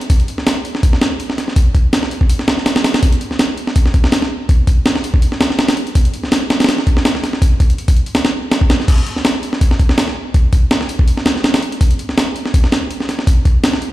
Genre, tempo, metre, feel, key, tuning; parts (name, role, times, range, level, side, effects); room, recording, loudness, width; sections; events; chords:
drum and bass; 164 BPM; 4/4; swing 54% on 16ths
breakbeat sampler-style drum kit; drums; 0.0-13.9 s; crash cymbal, hi-hat, kick drum, snare drum; -12 LUFS; equal
light reverb; played on a big sound system in a bare room, stone room reverb; -12 LUFS; side -16 dB against mid
0.0-8.9 A section; 8.9-13.9 A section
drop 0.0-8.9, 8.9-13.9